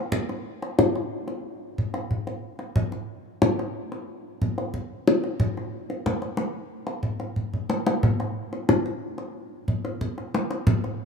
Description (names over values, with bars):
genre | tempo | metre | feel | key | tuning
gamelan | 91 BPM | 4/4 | straight | none | none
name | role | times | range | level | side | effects
kendang | percussion | 0.1-10.9 s | none | -24 LUFS | left 1 dB | none
room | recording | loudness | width
moderate plate reverb, RT60 3.4 s | none | -24 LUFS | side -5 dB against mid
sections
0.0-11.1 A section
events
drum fill 7.4-8.0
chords
none